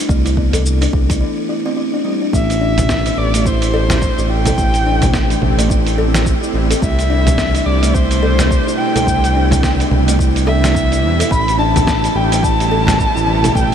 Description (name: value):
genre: organic downtempo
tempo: 107 BPM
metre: 4/4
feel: swing 59% on 16ths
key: A minor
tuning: A4 = 440 Hz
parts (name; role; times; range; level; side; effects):
- buzzing kalimba; arpeggios; 0.0-13.6 s; E3 to A4; -20 LUFS; equal; ping-pong delay
- smooth synth bass; bass; 0.1-13.7 s; A1 to E2; -16 LUFS; equal; sidechain pumping
- dusty soul sampler-style drum kit; drums; 0.1-13.7 s; cabasa, congas, hi-hat, snare drum; -21 LUFS; right 2 dB; none
- electronic kick drum; drums; 0.1-13.7 s; none; -19 LUFS; equal; none
- frame drum; percussion; 0.5-13.0 s; none; -25 LUFS; left 2 dB; none
- dark kamancheh; melody; 2.3-13.7 s; C5 to B5; -20 LUFS; left 1 dB; analog delay
- bowed-like drone; sustained chords; 3.1-13.7 s; B2 to E4; -22 LUFS; right 1 dB; built-in reverb, sidechain pumping
room: moderate huge ambient reverb, RT60 8.2 s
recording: dreamy mix soaked in reverb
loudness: -12 LUFS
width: side -8 dB against mid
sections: 0.0-2.3 A section; 2.3-13.7 B section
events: break 1.2-2.3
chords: 0.0 Cadd9; 2.3 Am9; 6.8 Cmaj9; 11.3 Am9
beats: | 0.10 0.66 1.22 1.78 | 2.34 2.90 3.46 4.02 | 4.58 5.14 5.70 6.26 | 6.83 7.39 7.95 8.51 | 9.07 9.63 10.19 10.75 | 11.31 11.87 12.43 12.99 | 13.55